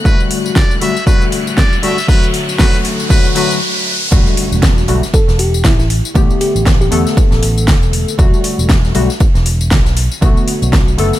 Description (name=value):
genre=deep house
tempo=118 BPM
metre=4/4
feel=swing 58% on 16ths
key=E minor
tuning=A4 = 440 Hz
part: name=warm analog keys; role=stabs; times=0.0-11.2 s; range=D3 to A4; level=-18 LUFS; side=left 2 dB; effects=chorus, sidechain pumping, dub echo
part: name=riser and impact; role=sound effects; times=0.0-6.2 s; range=none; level=-21 LUFS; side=right 1 dB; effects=none
part: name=clear studio violin section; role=texture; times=0.0-3.6 s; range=F#6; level=-30 LUFS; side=left 4 dB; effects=none
part: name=trumpet with metal mute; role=melody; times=0.1-3.5 s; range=B4 to E5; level=-21 LUFS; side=equal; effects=low-pass filter, dub echo
part: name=fingered electric bass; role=bass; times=0.1-11.1 s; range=E1 to E2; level=-17 LUFS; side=equal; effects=sidechain pumping, high-pass filter
part: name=deep house drum kit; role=drums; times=0.1-11.2 s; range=crash cymbal, hi-hat, snare drum, tambourine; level=-19 LUFS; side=equal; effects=overdrive, small room reverb
part: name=electronic kick drum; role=drums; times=0.1-10.8 s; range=none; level=-12 LUFS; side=equal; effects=small room reverb
part: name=street-band drum kit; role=drums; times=4.1-11.2 s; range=ride cymbal, snare drum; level=-26 LUFS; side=right 1 dB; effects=sidechain pumping on cymbals, high-pass filter on cymbals, small room reverb, high-pass filter on snare, high-pass filter on room
part: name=bell-like FM electric piano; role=melody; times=5.1-7.0 s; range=E4 to A4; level=-20 LUFS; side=equal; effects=chorus, ping-pong delay
room=studio reverb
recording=none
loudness=-10 LUFS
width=side -14 dB against mid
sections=0.0-4.1 A section; 4.1-11.2 B section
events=build-up 0.0-4.1; riser 0.0-4.1; stop 3.6-4.1; drop 4.1-11.2; impact 4.1-6.2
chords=0.1 Em11; 2.1 Bm7; 4.1 Em11; 5.9 A9sus4; 8.2 Em11; 10.2 Bm7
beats=| 0.05 0.56 1.07 1.58 | 2.09 2.60 3.10 3.61 | 4.12 4.63 5.14 5.64 | 6.15 6.66 7.17 7.68 | 8.19 8.70 9.21 9.71 | 10.22 10.73